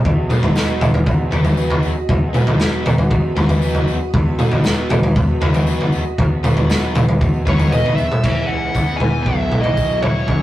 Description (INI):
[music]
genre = psychedelic rock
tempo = 117 BPM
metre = 4/4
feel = straight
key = unclear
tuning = A4 = 439 Hz
[part]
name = ensemble organ-string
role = sustained chords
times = 0.0-10.4 s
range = E4 to B5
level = -28 LUFS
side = right 2 dB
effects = ensemble chorus
[part]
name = fuzz fingered electric bass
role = bass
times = 0.0-10.4 s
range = B1 to E3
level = -25 LUFS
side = equal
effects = overdrive
[part]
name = crunchy breakbeat drum kit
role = drums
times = 0.1-10.4 s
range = crash cymbal, kick drum, snare drum, toms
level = -15 LUFS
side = equal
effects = none
[part]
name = overdriven electric guitar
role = riff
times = 0.3-10.4 s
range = F#2 to B4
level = -24 LUFS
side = equal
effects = none
[part]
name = tambourine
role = percussion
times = 0.3-9.9 s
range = none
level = -41 LUFS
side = left 6 dB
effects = none
[part]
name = fuzz lead guitar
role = melody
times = 7.5-10.4 s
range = C#5 to G#5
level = -21 LUFS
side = equal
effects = distortion
[sound]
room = light reverb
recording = rough rehearsal-room recording, tube saturation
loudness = -14 LUFS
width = side -15 dB against mid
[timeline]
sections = 0.0-8.2 A section; 8.2-10.4 B section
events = none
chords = 0.1 B/E; 8.2 Esus2